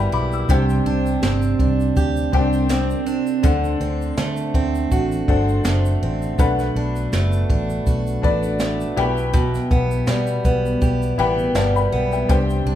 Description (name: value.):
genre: acoustic pop.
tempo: 81 BPM.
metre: 4/4.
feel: swing 55% on 16ths.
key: E minor.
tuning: A4 = 440 Hz.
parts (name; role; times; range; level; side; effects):
clear upright piano; accompaniment; 0.0-12.8 s; C4 to E6; -25 LUFS; left 5 dB; none.
picked steel-string acoustic guitar; accompaniment; 0.0-12.8 s; B2 to G4; -22 LUFS; right 3 dB; none.
fingered electric bass; bass; 0.0-12.8 s; F#1 to D3; -22 LUFS; equal; none.
jazz brush drum kit; drums; 0.3-12.7 s; kick drum, shaker, snare drum; -22 LUFS; equal; none.
room: moderate large studio reverb, RT60 0.8 s.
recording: band playing live in one room.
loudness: -17 LUFS.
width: side -11 dB against mid.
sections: 0.0-12.8 A section.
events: none.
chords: 0.5 Csus2; 3.4 D7; 6.4 Bm7; 9.0 Em/B.